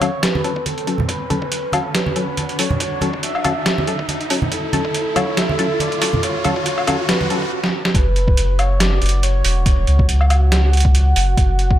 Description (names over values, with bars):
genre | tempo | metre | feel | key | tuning
deep dubstep | 140 BPM | 4/4 | swing 55% on 16ths, half-time | F# minor | A4 = 441 Hz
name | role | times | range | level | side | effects
breathy flute-like synth lead | melody | 0.0-10.1 s | A4 to E5 | -26 LUFS | equal | wide subtle chorus, dub echo
dark analog pad | sustained chords | 2.3-11.8 s | F#4 to F#5 | -28 LUFS | right 2 dB | chorus, phaser
filtered dub chord stab | stabs | 0.0-7.4 s | F#3 to A4 | -25 LUFS | left 4 dB | wide subtle chorus, dub echo
trip hop sampler-style drum kit | drums | 0.0-11.7 s | hi-hat, snare drum, woodblock | -21 LUFS | right 1 dB | overdrive
congas | percussion | 0.0-7.3 s | none | -25 LUFS | right 2 dB | none
riser | sound effects | 0.0-7.5 s | none | -26 LUFS | equal | none
electronic kick drum | drums | 0.6-11.8 s | none | -17 LUFS | equal | overdrive, high-pass filter on kick, high-pass filter on room
soft dub sub bass | bass | 7.9-11.8 s | E1 to C#2 | -15 LUFS | equal | none
room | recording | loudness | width
little or no reverb | none | -15 LUFS | side -12 dB against mid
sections
0.0-7.9 A section; 7.9-11.8 B section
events
build-up 0.0-7.9; riser 0.0-7.5; filter sweep on synth stab 0.0-7.9; stop 7.5-7.9; drum fill 7.6-7.9; drop 7.9-11.8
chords
0.0 F#m; 7.9 F#5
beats
0.23 0.66 | 1.09 1.52 1.95 2.38 | 2.80 3.23 3.66 4.09 | 4.52 4.95 5.38 5.80 | 6.23 6.66 7.09 7.52 | 7.95 8.38 8.80 9.23 | 9.66 10.09 10.52 10.95 | 11.38